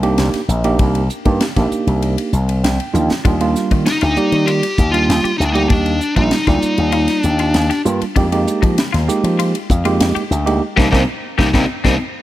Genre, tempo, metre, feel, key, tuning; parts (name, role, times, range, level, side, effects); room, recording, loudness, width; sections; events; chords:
electric jazz fusion; 98 BPM; 4/4; straight; C minor; A4 = 437 Hz
bright tine electric piano; accompaniment; 0.0-12.0 s; G3 to G5; -19 LUFS; right 4 dB
slap bass with an envelope filter; bass; 0.0-12.0 s; Bb1 to F3; -17 LUFS; left 1 dB
crisp fusion drum kit; drums; 0.0-12.0 s; hi-hat, kick drum, ride cymbal, snare drum, toms; -20 LUFS; left 1 dB
clean electric guitar; stabs; 3.2-11.9 s; C4 to G4; -25 LUFS; left 8 dB; analog chorus
smooth overdriven lead guitar; melody; 3.9-12.0 s; C4 to G4; -19 LUFS; left 2 dB
light reverb, small room ambience; -13 LUFS; side -14 dB against mid
0.0-12.2 A section
tine electric piano fill 2.3-3.2, 11.8-12.2; drum fill 2.9-3.2, 11.8-12.2; band accent 10.6-12.2
0.0 Cm9; 3.2 Ebmaj7; 8.2 Fm11; 10.6 Cm7